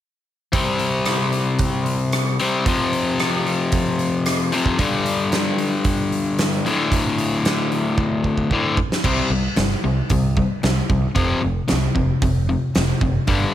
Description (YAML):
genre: classic rock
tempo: 113 BPM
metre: 4/4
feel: straight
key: unclear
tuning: A4 = 439 Hz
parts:
  - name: cranked stack guitar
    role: riff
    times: 0.5-13.5 s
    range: D2 to C4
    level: -20 LUFS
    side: left 2 dB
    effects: overdrive
  - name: big rock drum kit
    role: drums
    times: 0.5-13.4 s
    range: crash cymbal, hi-hat, kick drum, rim click, snare drum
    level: -23 LUFS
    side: right 2 dB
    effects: none
  - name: overdriven picked electric bass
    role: bass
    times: 9.0-13.4 s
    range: F1 to C2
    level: -23 LUFS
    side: right 2 dB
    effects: none
room: light reverb, small room ambience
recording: none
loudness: -18 LUFS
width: side -11 dB against mid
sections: 0.5-9.0 A section; 9.0-13.5 B section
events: drum fill 8.0-9.0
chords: 0.5 C5; 2.7 F5; 4.8 G5; 6.7 D5; 9.0 C5; 11.2 F5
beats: | 0.54 1.07 1.60 2.14 | 2.67 3.20 3.73 4.27 | 4.80 5.33 5.86 6.39 | 6.92 7.45 7.98 8.51 | 9.04 9.57 10.10 10.63 | 11.16 11.69 12.22 12.75 | 13.28